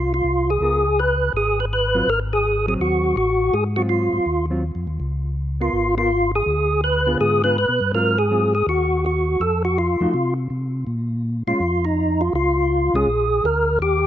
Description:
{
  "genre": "jazz",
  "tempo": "164 BPM",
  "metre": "4/4",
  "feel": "swing 64% on 8ths",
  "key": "Ab mixolydian",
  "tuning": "A4 = 440 Hz",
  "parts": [
    { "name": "percussive tonewheel organ", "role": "melody", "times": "0.0-14.1 s", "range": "Eb4 to Cb5", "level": "-19 LUFS", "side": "equal", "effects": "slow rotary speaker, overdrive, chorus vibrato" },
    { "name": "mellow tonewheel organ", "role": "bass", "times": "0.0-14.1 s", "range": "Ab1 to C3", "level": "-23 LUFS", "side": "left 1 dB", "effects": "slow rotary speaker" },
    { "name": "hollow-body jazz guitar", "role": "accompaniment", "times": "0.6-13.1 s", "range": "D3 to Bb4", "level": "-27 LUFS", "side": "equal", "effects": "none" }
  ],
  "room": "light reverb",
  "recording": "rough home demo mix, nothing above 7.9 kHz",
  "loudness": "-18 LUFS",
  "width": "side -11 dB against mid",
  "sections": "0.0-14.1 A section",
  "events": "none",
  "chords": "0.0 Ab6; 0.6 Db6; 2.1 Ab6; 5.0 Db6; 6.5 Ddim7; 7.9 Ab6; 9.4 F; 10.9 Bbm7"
}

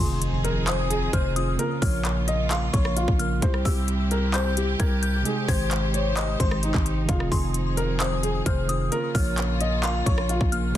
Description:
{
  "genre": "hip hop, trap",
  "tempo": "131 BPM",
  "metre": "4/4",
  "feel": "half-time",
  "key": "F minor",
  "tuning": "A4 = 441 Hz",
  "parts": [
    { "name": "dark grand piano", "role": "melody", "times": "0.0-10.8 s", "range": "Eb4 to F5", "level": "-30 LUFS", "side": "left 2 dB", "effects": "ping-pong delay" },
    { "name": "delicate synth tine bell", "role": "second line", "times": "0.0-10.7 s", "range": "C6 to Ab6", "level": "-34 LUFS", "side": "left 3 dB", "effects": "chorus, ping-pong delay" },
    { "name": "muted felt-like synth keys", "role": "accompaniment", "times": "0.0-10.8 s", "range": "C3 to Bb4", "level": "-31 LUFS", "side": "right 5 dB", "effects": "chorus" },
    { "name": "dark studio string section", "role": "sustained chords", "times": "0.0-10.8 s", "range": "C3 to C5", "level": "-33 LUFS", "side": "left 1 dB", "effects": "none" },
    { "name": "growling 808-style bass", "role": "bass", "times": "0.0-10.8 s", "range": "F1 to C2", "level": "-26 LUFS", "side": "equal", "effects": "none" },
    { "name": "impact", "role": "sound effects", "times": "0.0-1.6 s", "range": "none", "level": "-37 LUFS", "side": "equal", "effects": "none" },
    { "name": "trap drum kit", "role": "drums", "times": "0.2-10.8 s", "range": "handclaps, hi-hat, kick drum, rim click", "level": "-26 LUFS", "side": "equal", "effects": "none" }
  ],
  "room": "little or no reverb",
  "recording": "dense, heavily limited modern master",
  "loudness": "-21 LUFS",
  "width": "side -12 dB against mid",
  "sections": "0.0-10.8 A section",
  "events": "impact 0.0-1.6",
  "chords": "0.0 Fm7; 1.6 Bbm; 3.4 C; 5.3 Abmaj7; 7.1 Fm7; 8.9 Bbm"
}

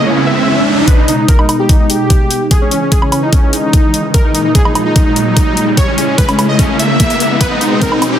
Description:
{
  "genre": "heavy wobble dubstep",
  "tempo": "147 BPM",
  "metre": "4/4",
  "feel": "half-time",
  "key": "G# harmonic minor",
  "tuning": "A4 = 440 Hz",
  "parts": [
    { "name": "soft supersaw", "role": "melody", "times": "0.0-8.2 s", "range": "C#4 to E5", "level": "-16 LUFS", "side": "equal", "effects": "dub echo" },
    { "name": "supersaw pad", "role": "sustained chords", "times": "0.0-8.2 s", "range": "A#2 to E4", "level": "-17 LUFS", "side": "equal", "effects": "phaser, vintage 12-bit sampler grit, sidechain pumping, low-pass filter" },
    { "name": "riser", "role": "sound effects", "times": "0.0-8.2 s", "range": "none", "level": "-17 LUFS", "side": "equal", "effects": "none" },
    { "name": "electronic hi-hat and woodblock", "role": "drums", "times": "0.9-8.1 s", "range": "none", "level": "-18 LUFS", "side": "equal", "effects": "overdrive, small room ambience" },
    { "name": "electronic kick drum", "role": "drums", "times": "0.9-7.9 s", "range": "none", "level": "-11 LUFS", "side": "equal", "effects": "overdrive, small room ambience" }
  ],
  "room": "moderate digital room reverb, RT60 1.1 s",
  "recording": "dense, heavily limited modern master, high-pass filter",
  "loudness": "-9 LUFS",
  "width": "side -10 dB against mid",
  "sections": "0.9-8.2 A section",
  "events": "riser 0.0-0.9, 0.9-8.2; build-up 0.9-8.2; filter sweep on supersaw synth 0.9-8.2; filter sweep 0.9-8.2; drum fill 7.4-8.2",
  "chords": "0.0 C#m; 0.9 G#m; 2.5 C#m; 4.1 D#sus4; 5.8 C#m; 7.4 G#m"
}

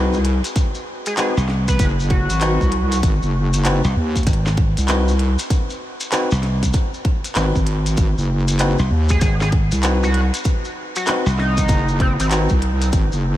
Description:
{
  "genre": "glitch hop",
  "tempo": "97 BPM",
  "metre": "4/4",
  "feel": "swing 64% on 16ths",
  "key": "unclear",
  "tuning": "A4 = 438 Hz",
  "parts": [
    { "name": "overdriven tine electric piano", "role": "stabs", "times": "0.0-12.5 s", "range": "B#3 to B4", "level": "-26 LUFS", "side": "left 1 dB", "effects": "sidechain pumping, analog delay" },
    { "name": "wobble bass", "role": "bass", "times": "0.0-13.4 s", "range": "F#1 to D#2", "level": "-18 LUFS", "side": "equal", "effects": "chorus, tube saturation" },
    { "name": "maracas", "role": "percussion", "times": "0.1-13.2 s", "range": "none", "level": "-31 LUFS", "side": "left 2 dB", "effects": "none" },
    { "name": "glitchy drum kit", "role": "drums", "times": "0.2-13.1 s", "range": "handclaps, hi-hat, snare drum", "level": "-27 LUFS", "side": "equal", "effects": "studio reverb" },
    { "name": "electronic kick drum", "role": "drums", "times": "0.6-13.1 s", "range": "none", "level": "-18 LUFS", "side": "equal", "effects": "studio reverb" },
    { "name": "sync lead", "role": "melody", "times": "1.1-3.0, 9.1-12.3 s", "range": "B#3 to B4", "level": "-26 LUFS", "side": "equal", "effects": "chorus, analog delay" },
    { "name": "slap bass", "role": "bass", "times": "1.4-11.7 s", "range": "G#1 to B#1", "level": "-18 LUFS", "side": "equal", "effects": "none" }
  ],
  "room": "light reverb",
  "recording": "none",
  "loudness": "-16 LUFS",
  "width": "side -14 dB against mid",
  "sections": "0.0-13.4 A section",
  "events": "none",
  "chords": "0.0 G#7#9"
}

